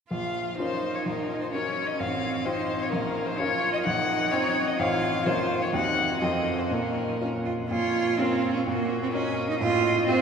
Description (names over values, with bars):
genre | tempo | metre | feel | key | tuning
quick classical-period movement for piano trio | 127 BPM | 2/4 | rubato | Bb minor | A4 = 440 Hz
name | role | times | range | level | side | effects
rich violin | melody | 0.1-10.2 s | F4 to Gb5 | -29 LUFS | left 4 dB | none
clear cello | second line | 0.1-10.2 s | Bb3 to F4 | -28 LUFS | right 4 dB | none
clear baby grand piano | accompaniment | 0.1-10.2 s | A1 to C5 | -29 LUFS | left 1 dB | none
room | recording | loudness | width
wet cathedral reverb, RT60 7.7 s | recorded in a church or concert hall | -24 LUFS | side -6 dB against mid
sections
0.1-7.7 A section; 7.7-10.2 B section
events
none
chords
0.1 Bbm; 1.1 Gb/Bb; 2.0 F/A; 2.9 Bbm; 3.9 Cm7b5/Bb; 4.8 F7/A; 5.3 Bbm; 5.7 Cdim/Eb; 6.2 F7; 6.7 Bbm; 8.7 Gb/Bb; 9.6 F/A